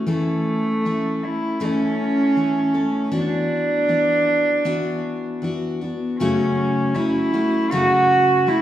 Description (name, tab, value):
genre	acoustic folk duo or small band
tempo	79 BPM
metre	4/4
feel	straight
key	unclear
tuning	A4 = 440 Hz
part	picked steel-string acoustic guitar	accompaniment	0.0-8.6 s	F#2 to A4	-22 LUFS	left 1 dB	none
part	warm cello	melody	0.1-8.6 s	A3 to F#4	-19 LUFS	right 1 dB	none
room	wet recital hall reverb, RT60 1.4 s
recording	recorded in a church or concert hall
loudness	-18 LUFS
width	side -12 dB against mid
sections	0.0-6.2 A section; 6.2-8.6 B section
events	none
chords	0.1 A/E; 3.1 Bm/E; 6.2 F#m